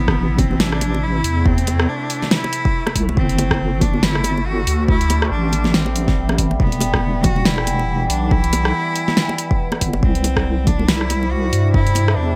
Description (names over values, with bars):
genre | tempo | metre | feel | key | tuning
deep dubstep | 140 BPM | 4/4 | swing 58% on 16ths, half-time | E minor | A4 = 440 Hz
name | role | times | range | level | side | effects
rich cello | melody | 0.0-12.4 s | B3 to F#4 | -26 LUFS | equal | dub echo
overtone-sweeping drone | sustained chords | 0.0-12.4 s | C3 to E4 | -29 LUFS | equal | chorus, built-in reverb
deep soft wobble bass | bass | 0.0-12.4 s | E1 to G2 | -21 LUFS | equal | chorus
deep house drum kit | drums | 0.1-12.2 s | hi-hat, rim click, snare drum | -23 LUFS | equal | none
electronic kick drum | drums | 0.1-11.8 s | none | -21 LUFS | equal | none
congas | percussion | 0.4-12.1 s | none | -27 LUFS | equal | none
room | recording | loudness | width
light reverb | vinyl crackle | -18 LUFS | mono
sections
0.0-12.4 A section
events
none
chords
0.0 Am; 3.2 Gsus2; 6.6 Em; 10.0 C